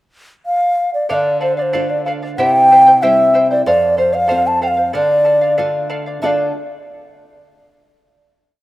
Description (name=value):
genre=andean folk, Andean ensemble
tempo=94 BPM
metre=2/4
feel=straight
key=D minor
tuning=A4 = 440 Hz
part: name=mellow bass bansuri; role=melody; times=0.5-6.5 s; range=C5 to A5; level=-12 LUFS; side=equal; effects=none
part: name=charango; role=accompaniment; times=1.1-6.5 s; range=E4 to G5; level=-22 LUFS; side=right 1 dB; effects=none
part: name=nylon-string guitar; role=accompaniment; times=1.1-6.5 s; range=F2 to A4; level=-25 LUFS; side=left 1 dB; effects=none
room=moderate plate reverb, RT60 2.7 s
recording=rough home demo mix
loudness=-12 LUFS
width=side -17 dB against mid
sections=0.0-1.1 pickup bar; 1.1-6.2 A section; 6.2-7.5 final chord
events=none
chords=0.0 N.C.; 1.1 Dm; 2.4 C; 3.7 F; 4.9 Dm